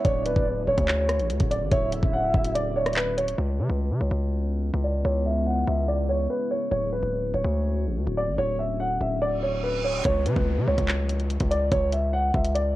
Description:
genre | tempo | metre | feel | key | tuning
hip hop, drill | 144 BPM | 4/4 | half-time | unclear | A4 = 440 Hz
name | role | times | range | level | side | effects
dark concert grand piano | melody | 0.0-12.7 s | B4 to F#5 | -27 LUFS | equal | low-pass filter, cassette tape
soft octave-layered synth lead | second line | 0.0-3.0 s | C#5 to E5 | -29 LUFS | right 2 dB | chorus, tremolo, analog delay
deep dark ambient pad | sustained chords | 0.0-10.0 s | C#3 to F#4 | -35 LUFS | left 1 dB | chorus, built-in reverb, low-pass filter
distorted 808-style bass | bass | 0.0-12.8 s | D1 to C#3 | -26 LUFS | equal | distortion
drill drum kit | drums | 0.0-3.4, 10.0-12.6 s | handclaps, hi-hat, kick drum, rim click | -26 LUFS | equal | overdrive, cassette tape
reverse cymbal and downlifter | sound effects | 9.4-12.8 s | none | -36 LUFS | right 1 dB | none
room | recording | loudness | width
light reverb, digital ambience | home recording on cassette | -22 LUFS | side -16 dB against mid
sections
0.0-3.4 A section; 3.4-10.0 B section; 10.0-12.8 C section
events
filter sweep 3.4-10.0; reverse cymbal 9.4-10.0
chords
0.0 Dmaj7; 3.4 C#m7; 6.7 Dmaj7; 10.0 N.C.

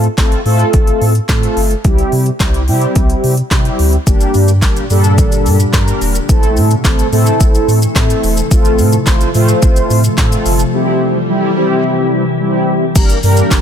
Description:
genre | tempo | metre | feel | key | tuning
dance-pop | 108 BPM | 4/4 | straight | unclear | A4 = 436 Hz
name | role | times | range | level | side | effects
mellow synth brass | accompaniment | 0.0-13.6 s | G3 to C5 | -15 LUFS | equal | chorus, sidechain pumping
round analog bass | bass | 0.0-13.6 s | E1 to C3 | -14 LUFS | equal | sidechain pumping
deep house drum kit | drums | 0.0-13.6 s | crash cymbal, handclaps, hi-hat, kick drum, shaker, snare drum | -14 LUFS | equal | none
glassy FM pad | sustained chords | 4.4-13.6 s | Bb2 to A4 | -19 LUFS | left 1 dB | ensemble chorus, built-in reverb, sidechain pumping
swell | sound effects | 11.0-11.8 s | none | -23 LUFS | right 2 dB | none
room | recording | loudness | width
digital ambience | none | -10 LUFS | side -8 dB against mid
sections
0.0-13.0 A section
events
break 10.7-13.0; swell 11.0-13.0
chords
0.0 F/A; 1.8 C; 4.1 Gm; 6.3 Am; 8.5 F/A; 10.7 C; 13.0 Gm

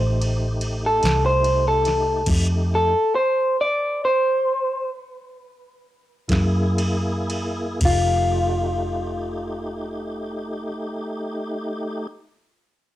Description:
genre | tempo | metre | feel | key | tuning
slow blues | 38-49 BPM (dotted quarters) | 12/8 | straight | F mixolydian | A4 = 440 Hz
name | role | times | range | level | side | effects
electric guitar through a small old amp | melody | 0.0-12.1 s | F4 to D5 | -21 LUFS | equal | cassette tape
tonewheel organ | sustained chords | 0.0-12.1 s | A3 to Ab4 | -29 LUFS | equal | slow rotary speaker, overdrive, chorus vibrato, cassette tape
vintage muted fingered electric bass | bass | 0.0-12.0 s | F1 to Gb2 | -22 LUFS | equal | none
soft vintage rhythm box | drums | 0.2-8.1 s | crash cymbal, kick drum, ride cymbal, snare drum | -27 LUFS | equal | cassette tape
room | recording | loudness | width
light reverb | home recording on cassette | -20 LUFS | side -14 dB against mid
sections
0.0-7.8 A section; 7.8-13.0 B section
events
clean electric guitar solo 0.0-7.8; slowing down 0.6-7.8; kick and snare drop out 6.3-7.8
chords
0.0 F7 (rootless); 2.3 F9; 6.3 Gb9; 7.8 F9

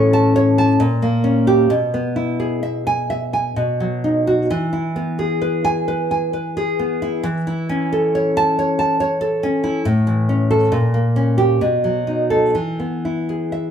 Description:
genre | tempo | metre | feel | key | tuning
romantic piece for solo classical guitar | 61-70 BPM | 3/4 | rubato | E major | A4 = 437 Hz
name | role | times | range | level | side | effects
nylon-string guitar | solo | 0.0-13.7 s | A2 to A5 | -16 LUFS | equal | none
room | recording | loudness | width
wet large studio reverb, RT60 1.1 s | band playing live in one room | -16 LUFS | side -8 dB against mid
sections
0.0-13.7 A section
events
none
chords
0.0 A; 0.8 A#m6; 1.7 E/B; 3.6 B; 4.5 E; 7.2 A/E; 9.9 A; 10.7 A#m6; 11.6 B7; 12.5 E

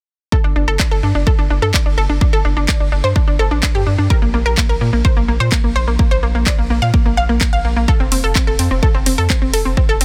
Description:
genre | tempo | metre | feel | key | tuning
progressive house | 127 BPM | 4/4 | straight | G minor | A4 = 440 Hz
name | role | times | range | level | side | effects
analog pluck | arpeggios | 0.3-10.0 s | Bb3 to F5 | -21 LUFS | equal | chorus, sidechain pumping, tape echo
electronic kick drum | drums | 0.3-9.9 s | none | -18 LUFS | equal | none
round analog bass | bass | 0.4-10.0 s | F1 to Bb2 | -20 LUFS | equal | sidechain pumping
pop drum kit | drums | 0.8-10.0 s | handclaps, hi-hat | -26 LUFS | equal | none
room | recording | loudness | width
little or no reverb | dense, heavily limited modern master | -15 LUFS | mono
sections
0.3-10.0 A section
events
none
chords
0.3 Gsus2; 4.1 N.C.; 7.9 F5

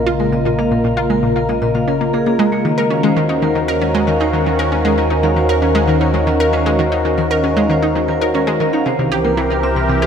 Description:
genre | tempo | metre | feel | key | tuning
ambient, sequencer-driven space music | 116 BPM | 4/4 | straight | unclear | A4 = 440 Hz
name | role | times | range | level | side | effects
sweeping resonant pad | sustained chords | 0.0-10.1 s | Db3 to Bb4 | -17 LUFS | left 1 dB | chorus
vibraphone with medium hard mallets | arpeggios | 0.0-10.1 s | Bb3 to F5 | -20 LUFS | equal | auto-pan, tape echo
round analog bass | bass | 0.0-10.1 s | Bb1 to Eb2 | -22 LUFS | equal | none
analog pluck | riff | 0.1-10.1 s | Bb2 to Bb4 | -18 LUFS | right 1 dB | chorus, tape echo
room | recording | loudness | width
moderate plate reverb, RT60 3.9 s | dreamy mix soaked in reverb | -13 LUFS | side -7 dB against mid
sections
0.0-10.1 A section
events
none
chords
0.0 Bbm; 2.7 Ebm7; 8.9 C7

